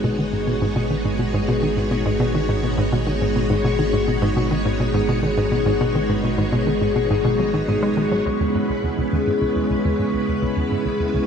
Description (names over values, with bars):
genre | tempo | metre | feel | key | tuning
ambient, sequencer-driven space music | 104 BPM | 4/4 | straight | G# minor, C# minor from 8.3 s | A4 = 440 Hz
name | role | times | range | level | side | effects
string machine, full ensemble | sustained chords | 0.0-11.3 s | G#3 to C#5 | -23 LUFS | right 1 dB | ensemble chorus
concert harp | arpeggios | 0.0-11.3 s | C#3 to G#5 | -25 LUFS | moving between left 7 dB and right 2 dB | auto-pan, low-pass filter, tape echo
hollow square pluck | riff | 0.0-11.2 s | C#2 to G#3 | -22 LUFS | equal | chorus, tape echo
warm sub bass | bass | 0.0-8.2 s | G#1 | -29 LUFS | equal | tube saturation
room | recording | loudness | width
wet cathedral reverb, RT60 6.7 s | in a vast, echoing space | -18 LUFS | side -7 dB against mid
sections
0.0-8.3 A section; 8.3-11.3 B section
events
filter sweep on synth arpeggio sound 0.0-8.3, 8.3-11.3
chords
0.0 G#m7; 8.3 C#m7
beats
0.18 0.76 | 1.34 1.91 2.49 3.07 | 3.64 4.22 4.80 5.38 | 5.95 6.53 7.11 7.68 | 8.26 8.84 9.41 9.99 | 10.57 11.14